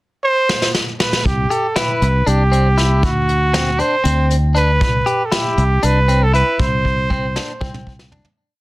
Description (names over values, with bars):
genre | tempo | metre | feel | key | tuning
progressive instrumental, band music in an uneven meter | 236 BPM (eighths) | 7/8 | straight | C lydian | A4 = 442 Hz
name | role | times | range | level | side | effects
clear trumpet | melody | 0.2-7.9 s | F#4 to C5 | -18 LUFS | right 2 dB | none
vintage brush drum kit | drums | 0.5-8.4 s | hi-hat, kick drum, snare drum, toms | -20 LUFS | equal | soft clipping on snare
fretless electric bass | bass | 1.3-8.2 s | C2 to D2 | -16 LUFS | equal | none
clean electric guitar | arpeggios | 1.5-8.3 s | C4 to G4 | -22 LUFS | left 2 dB | digital delay
room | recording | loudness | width
little or no reverb | dense, heavily limited modern master | -14 LUFS | side -19 dB against mid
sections
0.0-1.3 pickup bar; 1.3-8.4 A section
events
drum fill 0.5-1.3, 6.8-8.4; fade-out 6.6-8.4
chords
0.0 N.C.; 1.3 Cmaj7; 3.0 D7; 4.8 C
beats
0.23 0.49 0.74 1.00 | 1.25 1.51 1.76 2.02 2.27 2.52 2.78 | 3.03 3.29 3.54 3.79 4.05 4.30 4.56 | 4.81 5.07 5.32 5.57 5.83 6.08 6.34 | 6.59 6.85 7.10 7.36 7.61 7.87 8.12